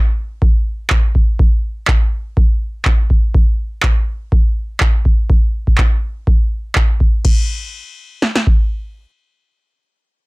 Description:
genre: acid house.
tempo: 123 BPM.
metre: 4/4.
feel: swing 54% on 16ths.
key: none.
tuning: none.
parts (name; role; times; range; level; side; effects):
electro analog drum machine; drums; 0.4-8.6 s; kick drum, snare drum; -13 LUFS; equal; none.
electro analog drum machine; drums; 0.9-7.4 s; crash cymbal, handclaps; -20 LUFS; equal; none.
room: little or no reverb.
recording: dense, heavily limited modern master.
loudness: -13 LUFS.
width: side -25 dB against mid.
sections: 0.0-7.2 A section; 7.2-10.3 B section.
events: none.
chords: none.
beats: 0.42 0.91 | 1.39 1.88 2.37 2.86 | 3.34 3.83 4.32 4.81 | 5.30 5.78 6.27 6.76 | 7.25 7.74 8.22.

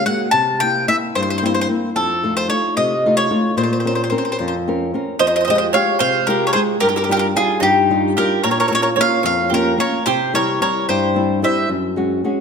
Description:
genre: italian folk, Italian serenade.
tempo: 74 BPM (dotted quarters).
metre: 6/8.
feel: straight.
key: Bb minor, F minor from 5.2 s.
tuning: A4 = 440 Hz.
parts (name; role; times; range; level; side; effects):
mandolin; melody; 0.0-11.7 s; G4 to A5; -18 LUFS; left 2 dB; none.
flamenco guitar; accompaniment; 0.0-12.4 s; F2 to Bb4; -19 LUFS; left 2 dB; none.
bowl-back mandolin; second line; 5.2-11.7 s; Eb4 to Db5; -20 LUFS; right 8 dB; none.
room: wet recital hall reverb, RT60 1.6 s.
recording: none.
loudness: -15 LUFS.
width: side -6 dB against mid.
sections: 0.0-5.2 A section; 5.2-12.4 B section.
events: none.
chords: 0.3 C7; 1.9 F7; 3.6 Bbmadd9; 5.2 Fmadd9; 6.8 Ebadd9/G; 8.4 Bbm; 10.1 C; 11.7 Gbsus2.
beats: | 0.32 1.14 | 1.95 2.75 | 3.57 4.38 | 5.20 6.01 | 6.82 7.63 | 8.44 9.24 | 10.05 10.87 | 11.69.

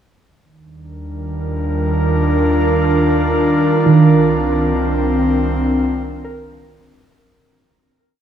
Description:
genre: ambient.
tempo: free time.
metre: none.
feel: none.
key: C minor.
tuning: A4 = 440 Hz.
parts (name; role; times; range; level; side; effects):
airy breathy pad; sustained chords; 1.1-7.3 s; Eb3 to Bb4; -16 LUFS; equal; chorus, shimmer reverb.
round analog bass; bass; 0.3-7.2 s; C2 to Eb2; -22 LUFS; equal; tube saturation.
soft round pluck; arpeggios; 3.9-8.2 s; Eb3 to Bb4; -15 LUFS; right 4 dB; chorus, tape echo.
room: moderate huge ambient reverb, RT60 8.6 s.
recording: studio reverb.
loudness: -13 LUFS.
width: side -9 dB against mid.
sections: 0.3-7.2 A section.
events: fade-in on analog synth pad 0.3-7.2; fade-in on analog synth bass 0.3-7.2; fade-out 3.8-7.2.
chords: 0.3 Ebmaj9; 3.8 Cm11.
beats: free time.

